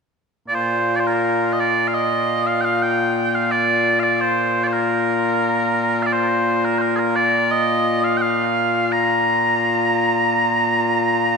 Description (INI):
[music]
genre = scottish traditional, Scottish pipe music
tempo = 86 BPM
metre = 4/4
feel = straight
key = Bb major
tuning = A4 = 440 Hz
[part]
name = mellow small bagpipes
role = solo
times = 0.5-11.4 s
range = Bb2 to Bb5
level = -16 LUFS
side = equal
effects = none
[sound]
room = wet concert hall reverb, RT60 2.5 s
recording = recorded in a church or concert hall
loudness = -16 LUFS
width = side -5 dB against mid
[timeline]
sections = 0.6-11.4 A section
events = none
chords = none